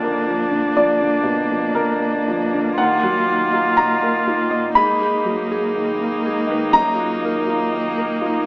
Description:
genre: neoclassical piano and strings.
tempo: 60 BPM.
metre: 4/4.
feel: rubato.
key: Eb minor.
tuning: A4 = 440 Hz.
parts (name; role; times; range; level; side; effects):
muted cello; second line; 0.0-8.5 s; Bb3; -25 LUFS; right 1 dB; none.
muted viola; accompaniment; 0.0-8.5 s; D4 to F4; -22 LUFS; equal; none.
warm upright piano; accompaniment; 0.0-8.5 s; Eb2 to Cb6; -19 LUFS; equal; none.
Celtic harp; arpeggios; 0.0-8.5 s; Eb4 to D6; -26 LUFS; equal; tape echo.
room: moderate scoring stage reverb, RT60 1.6 s.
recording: small speaker sound.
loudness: -16 LUFS.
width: side -29 dB against mid.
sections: 0.0-8.5 A section.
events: none.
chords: 0.0 Bb/F; 2.8 Ebmadd9; 4.8 Abmadd9; 6.7 Ebmadd9/Gb.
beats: 0.76 1.74 | 2.78 3.77 4.76 5.76 | 6.74 7.74.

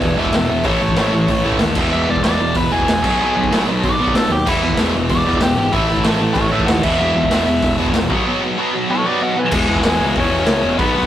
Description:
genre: punk rock.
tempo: 189 BPM.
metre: 4/4.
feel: straight.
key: E major.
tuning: A4 = 440 Hz.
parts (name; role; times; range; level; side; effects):
biting overdriven guitar; melody; 0.0-11.1 s; G#3 to G#5; -20 LUFS; equal; none.
heavy high-gain guitar; riff; 0.0-11.1 s; E2 to B3; -21 LUFS; equal; distortion.
tight distorted guitar; riff; 0.0-11.1 s; E2 to B3; -24 LUFS; left 5 dB; distortion.
tight distorted guitar; riff; 0.0-9.5 s; E2 to B3; -23 LUFS; right 4 dB; distortion.
fuzz picked electric bass; bass; 0.0-11.1 s; E1 to D#2; -21 LUFS; equal; overdrive.
raw garage drum kit; drums; 0.0-11.1 s; crash cymbal, hi-hat, kick drum, snare drum; -21 LUFS; equal; none.
room: light reverb.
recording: rough rehearsal-room recording, tube saturation.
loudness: -14 LUFS.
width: side -11 dB against mid.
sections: 0.0-9.5 A section; 9.5-11.1 B section.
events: overdriven electric guitar solo 0.0-9.5.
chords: 0.0 E; 0.7 A; 1.8 E; 3.0 B5; 4.5 E5; 5.7 A; 6.8 E5; 8.1 B5; 9.5 E.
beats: 0.02 0.34 | 0.65 0.97 1.29 1.61 | 1.92 2.24 2.56 2.88 | 3.19 3.51 3.83 4.14 | 4.46 4.78 5.10 5.41 | 5.73 6.05 6.36 6.68 | 7.00 7.31 7.63 7.95 | 8.26 8.58 8.89 9.21 | 9.53 9.84 10.16 10.47 | 10.79.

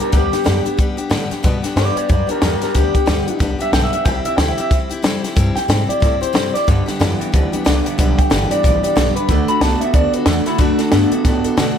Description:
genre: rockabilly.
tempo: 184 BPM.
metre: 4/4.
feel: swing 60% on 8ths.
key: G major.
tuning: A4 = 441 Hz.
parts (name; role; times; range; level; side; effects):
electric guitar through a small old amp; melody; 0.0-11.1 s; D4 to B5; -20 LUFS; left 1 dB; analog delay.
picked steel-string acoustic guitar; accompaniment; 0.0-11.8 s; G2 to A4; -22 LUFS; left 5 dB; none.
upright bass; bass; 0.0-11.8 s; G1 to B2; -20 LUFS; equal; none.
compact cocktail drum kit; drums; 0.0-11.7 s; hi-hat, kick drum, snare drum; -18 LUFS; equal; none.
electric guitar through a small old amp; riff; 6.7-11.8 s; G2 to B3; -21 LUFS; right 4 dB; none.
room: small room ambience.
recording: none.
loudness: -14 LUFS.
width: side -8 dB against mid.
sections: 0.0-11.8 A section.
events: none.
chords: 0.0 G; 4.1 C; 6.7 G; 9.3 D.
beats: | 0.13 0.46 0.79 1.11 | 1.44 1.77 2.10 2.42 | 2.75 3.08 3.40 3.73 | 4.06 4.39 4.71 5.04 | 5.37 5.69 6.02 6.35 | 6.67 7.00 7.33 7.66 | 7.98 8.31 8.64 8.96 | 9.29 9.62 9.94 10.27 | 10.59 10.92 11.25 11.57.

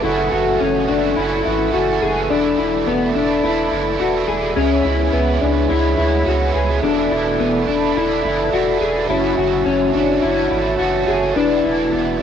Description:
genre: dream pop.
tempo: 106 BPM.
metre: 4/4.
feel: straight.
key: E mixolydian.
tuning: A4 = 440 Hz.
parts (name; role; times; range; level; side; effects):
cranked stack guitar; accompaniment; 0.0-12.2 s; E2 to F#4; -23 LUFS; right 10 dB; overdrive, harmonic tremolo, ensemble chorus, cassette tape.
mellow tonewheel organ; sustained chords; 0.0-12.2 s; E4 to C#6; -20 LUFS; right 2 dB; slow rotary speaker, cassette tape.
mellow electric guitar; arpeggios; 0.0-12.2 s; B3 to G#4; -19 LUFS; left 8 dB; analog chorus, cassette tape, tape echo.
saturated sub bass; bass; 0.0-12.2 s; E1 to D2; -25 LUFS; right 2 dB; none.
room: moderate spring reverb, RT60 1.6 s.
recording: home recording on cassette.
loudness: -15 LUFS.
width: side -8 dB against mid.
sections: 0.0-12.2 A section.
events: none.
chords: 0.0 F#m7; 2.3 E7sus4; 4.6 C#m7; 6.8 E7sus4; 9.1 F#m7; 11.4 E7sus4.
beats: | 0.04 0.61 1.17 1.74 | 2.31 2.87 3.44 4.00 | 4.57 5.13 5.70 6.27 | 6.83 7.40 7.96 8.53 | 9.10 9.66 10.23 10.79 | 11.36 11.93.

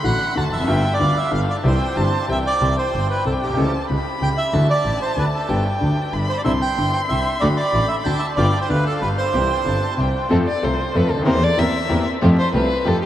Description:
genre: tango.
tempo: 188 BPM.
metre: 3/4.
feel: rubato.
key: C major.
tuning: A4 = 440 Hz.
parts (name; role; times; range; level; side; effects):
bandoneon; melody; 0.0-9.9 s; G4 to G5; -23 LUFS; right 2 dB; none.
warm violin; second line; 0.0-13.1 s; G4 to C6; -25 LUFS; left 1 dB; none.
bright grand piano; accompaniment; 0.0-13.0 s; G1 to A4; -23 LUFS; left 2 dB; none.
warm double bass; bass; 0.1-13.0 s; F1 to F2; -22 LUFS; right 1 dB; none.
warm studio string section; stabs; 6.5-13.0 s; A3 to Bb4; -27 LUFS; right 1 dB; none.
room: wet huge ambient reverb, RT60 8.9 s.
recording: in a vast, echoing space, vinyl crackle.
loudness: -17 LUFS.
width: side -12 dB against mid.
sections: 0.0-2.6 A section; 2.6-10.3 A section; 10.3-13.1 B section.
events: violin solo 10.3-13.1.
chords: 0.0 D; 0.7 G7; 1.6 C; 3.6 A/C#; 4.5 Dadd9; 5.5 G; 6.5 Cadd9; 7.4 D; 8.4 G7; 9.3 C; 10.3 F; 11.3 C7/E; 12.2 Fadd9.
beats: 0.05 0.37 | 0.69 1.00 1.32 | 1.64 1.97 2.29 | 2.61 2.94 3.26 | 3.58 3.89 4.21 | 4.53 4.85 5.17 | 5.49 5.81 6.14 | 6.46 6.78 7.10 | 7.42 7.74 8.06 | 8.38 8.70 9.02 | 9.34 9.66 9.98 | 10.30 10.63 10.95 | 11.27 11.58 11.90 | 12.22 12.54 12.85.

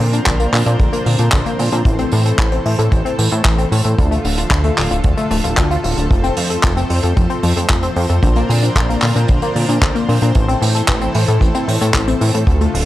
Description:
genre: italo disco.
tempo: 113 BPM.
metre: 4/4.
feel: straight.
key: unclear.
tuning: A4 = 440 Hz.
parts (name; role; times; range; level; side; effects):
lush unison pad; sustained chords; 0.0-12.9 s; D3 to C5; -22 LUFS; equal; chorus, shimmer reverb.
analog pluck; arpeggios; 0.0-12.8 s; D3 to A4; -21 LUFS; left 3 dB; chorus, phaser, cassette tape, tape echo, shimmer reverb.
chorused synth bass; bass; 0.0-12.9 s; D1 to Bb2; -16 LUFS; equal; none.
unplugged drum kit; drums; 0.0-12.9 s; handclaps, hi-hat; -21 LUFS; right 1 dB; none.
kick drum; drums; 0.3-12.6 s; none; -17 LUFS; equal; none.
room: light reverb, small room ambience.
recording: dry, gritty hardware recording, cassette tape.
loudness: -13 LUFS.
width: side -15 dB against mid.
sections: 0.0-12.9 A section.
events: none.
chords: 0.0 Bbadd9; 1.9 Am; 4.0 Dm; 6.1 F; 8.2 Bbadd9; 10.4 Am.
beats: 0.27 0.80 1.33 | 1.86 2.39 2.92 3.45 | 3.98 4.51 5.04 5.57 | 6.11 6.64 7.17 7.70 | 8.23 8.76 9.29 9.82 | 10.35 10.88 11.41 11.95 | 12.48.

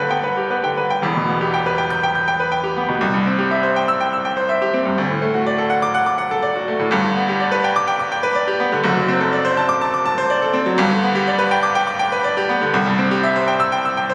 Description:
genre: classical, virtuoso piano study.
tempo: 123 BPM.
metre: 4/4.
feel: rubato.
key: G major.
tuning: A4 = 440 Hz.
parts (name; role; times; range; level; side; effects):
bright baby grand piano; solo; 0.0-14.1 s; E1 to G6; -18 LUFS; equal; none.
room: moderate scoring stage reverb, RT60 1.8 s.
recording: recorded on a phone in the room, studio reverb.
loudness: -18 LUFS.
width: mono.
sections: 0.0-1.0 A section; 1.0-14.1 B section.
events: none.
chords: 0.0 G; 1.0 Em; 3.0 C; 5.0 D; 6.9 G; 8.8 D7/F#; 10.8 G; 12.7 C.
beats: 0.50 | 1.03 1.53 2.02 2.52 | 3.01 3.51 4.00 4.48 | 4.97 5.46 5.95 6.42 | 6.91 7.40 7.88 8.36 | 8.84 9.33 9.81 10.30 | 10.79 11.27 11.76 12.25 | 12.74 13.23 13.72.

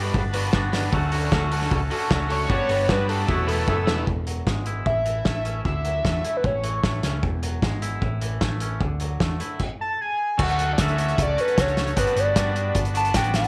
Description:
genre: indie rock.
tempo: 152 BPM.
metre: 4/4.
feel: straight.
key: unclear.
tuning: A4 = 440 Hz.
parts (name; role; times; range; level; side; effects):
overdriven combo organ; sustained chords; 0.0-4.1, 10.4-13.5 s; G3 to E6; -38 LUFS; equal; none.
overdriven semi-hollow guitar; riff; 0.0-4.1 s; D3 to B4; -33 LUFS; equal; ensemble chorus, slapback echo.
twangy electric guitar; riff; 0.0-13.5 s; E2 to F#4; -32 LUFS; equal; none.
hollow-body short-scale picked electric bass; bass; 0.0-13.5 s; E1 to G2; -29 LUFS; equal; none.
loose indie drum kit; drums; 0.1-13.5 s; crash cymbal, hi-hat, kick drum, snare drum; -28 LUFS; equal; none.
overdriven synth lead; melody; 2.3-7.0, 9.8-13.5 s; F#4 to A5; -27 LUFS; equal; phaser, slapback echo.
room: light reverb, small room ambience.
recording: none.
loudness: -23 LUFS.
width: mono.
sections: 0.0-4.1 A section; 4.1-10.4 B section; 10.4-13.5 C section.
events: analog synth lead solo 0.0-4.1; drum fill 3.7-4.1.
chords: 0.0 Gmaj7; 0.9 Dmaj7; 2.5 Gmaj7; 3.3 Esus4; 4.1 Eadd9; 4.9 A; 5.6 Dadd9; 6.4 A; 7.2 Eadd9; 8.0 A; 8.8 Dadd9; 9.6 N.C.; 10.4 Dmaj7; 12.0 Gmaj7.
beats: 0.15 0.54 | 0.93 1.32 1.71 2.11 | 2.50 2.89 3.28 3.68 | 4.07 4.46 4.86 5.25 | 5.65 6.04 6.44 6.84 | 7.23 7.63 8.03 8.42 | 8.82 9.21 9.61 10.00 | 10.40 10.79 11.19 11.58 | 11.97 12.36 12.76 13.15.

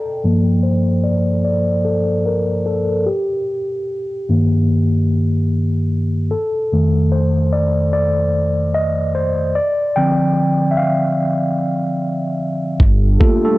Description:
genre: lo-fi hip hop.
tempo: 74 BPM.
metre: 4/4.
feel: swing 60% on 16ths.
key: G minor.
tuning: A4 = 441 Hz.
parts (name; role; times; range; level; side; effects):
mellow tine electric piano; accompaniment; 0.0-13.6 s; F2 to G5; -15 LUFS; equal; medium stereo tremolo, cassette tape, low-pass filter.
warbly tape-like pad; sustained chords; 12.8-13.6 s; G3 to A4; -21 LUFS; right 2 dB; chorus, built-in reverb, low-pass filter.
deep dub fingered electric bass; bass; 12.8-13.2 s; G1; -14 LUFS; equal; tube saturation.
electronic kick drum; drums; 12.8-13.4 s; none; -12 LUFS; equal; vintage 12-bit sampler grit.
room: moderate spring reverb, RT60 2.5 s.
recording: worn, warbling old tape, cassette tape, warbly pitch drift.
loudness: -15 LUFS.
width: side -19 dB against mid.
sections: 0.0-12.8 A section.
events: tine electric piano solo 0.0-12.8; filter sweep on tine electric piano 0.0-12.8; hi-hats muted 12.8-13.6.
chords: 0.0 Gm9; 3.1 Eb/G; 6.3 F7; 9.6 Dm7; 12.8 Gm9.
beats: 0.64 1.45 2.26 | 3.07 3.88 4.69 5.50 | 6.31 7.12 7.93 8.74 | 9.55 10.37 11.18 11.99 | 12.80.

